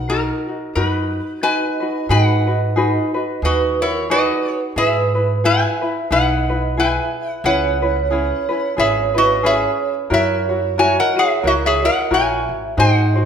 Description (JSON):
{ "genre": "Hawaiian", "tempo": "90 BPM", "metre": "4/4", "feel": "swing 57% on 8ths", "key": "G# minor", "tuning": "A4 = 444 Hz", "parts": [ { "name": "lap resonator guitar", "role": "melody", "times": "0.0-13.3 s", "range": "E4 to G#5", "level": "-19 LUFS", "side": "left 2 dB", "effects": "none" }, { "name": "tenor ukulele", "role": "accompaniment", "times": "0.0-13.3 s", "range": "C#4 to C#5", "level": "-21 LUFS", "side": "left 3 dB", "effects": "none" }, { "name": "upright bass", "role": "bass", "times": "0.0-13.3 s", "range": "G#1 to G#2", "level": "-21 LUFS", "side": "right 1 dB", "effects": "none" }, { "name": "vibraphone with soft mallets", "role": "second line", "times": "1.4-13.3 s", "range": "A#4 to E5", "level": "-22 LUFS", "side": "right 8 dB", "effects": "none" } ], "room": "wet recital hall reverb, RT60 1.4 s", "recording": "minimal, uncompressed stereo recording", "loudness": "-15 LUFS", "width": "side -7 dB against mid", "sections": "0.0-2.1 A section; 2.1-13.3 B section", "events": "none", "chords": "0.0 Bmaj7; 2.1 G#m7; 4.8 Emaj7/G#; 7.4 C#m7; 10.1 F#7" }